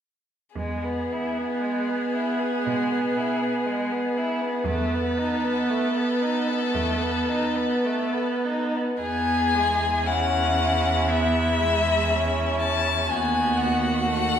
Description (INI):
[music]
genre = classical, slow romantic movement for string quartet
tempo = 49-62 BPM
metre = 4/4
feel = rubato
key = E major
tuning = A4 = 439 Hz
[part]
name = rich violin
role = melody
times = 0.6-14.4 s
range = G#4 to A5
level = -27 LUFS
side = left 5 dB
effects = none
[part]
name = rich violin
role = second line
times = 0.6-14.4 s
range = G#3 to G#4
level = -27 LUFS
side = left 2 dB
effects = none
[part]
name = clear viola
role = accompaniment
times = 0.6-14.4 s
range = G#3 to C#4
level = -26 LUFS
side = right 3 dB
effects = none
[part]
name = rich cello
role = bass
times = 0.6-14.4 s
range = D#2 to B2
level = -28 LUFS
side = right 3 dB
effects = none
[sound]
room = wet recital hall reverb, RT60 1.7 s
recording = recorded in a church or concert hall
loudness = -22 LUFS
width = side -8 dB against mid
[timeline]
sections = 0.6-9.0 A section; 9.0-14.4 B section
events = none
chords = 0.6 E; 13.1 B7/D#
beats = | 0.56 1.63 2.66 3.66 | 4.65 5.68 6.73 7.84 | 9.01 10.06 11.09 12.10 | 13.10 14.07